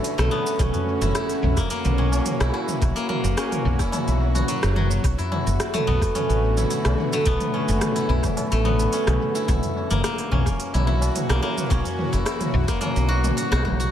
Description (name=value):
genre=organic downtempo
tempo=108 BPM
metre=4/4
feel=straight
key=unclear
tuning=A4 = 440 Hz
part: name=bowed-like drone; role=sustained chords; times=0.0-13.9 s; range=D3 to F#4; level=-29 LUFS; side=equal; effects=built-in reverb, sidechain pumping
part: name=steel-string zither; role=arpeggios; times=0.0-13.9 s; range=F#3 to F#4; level=-26 LUFS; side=left 1 dB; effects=analog delay
part: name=organic electronic drum kit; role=drums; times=0.0-13.9 s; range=hi-hat, rim click, shaker, toms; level=-27 LUFS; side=equal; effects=analog delay
part: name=tabla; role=percussion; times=0.0-13.8 s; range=none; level=-34 LUFS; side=left 1 dB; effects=none
part: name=woody fretless electric bass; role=bass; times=0.2-13.9 s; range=F#1 to B1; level=-22 LUFS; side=equal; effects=tube saturation, ensemble chorus
part: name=electronic kick drum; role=drums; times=0.6-13.8 s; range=none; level=-25 LUFS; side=equal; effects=overdrive
room=light reverb, digital ambience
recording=echo-heavy mix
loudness=-20 LUFS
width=side -10 dB against mid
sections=0.0-13.9 A section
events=band accent 13.5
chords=0.0 Bm7; 0.6 F#7; 5.0 Bm7; 9.5 F#7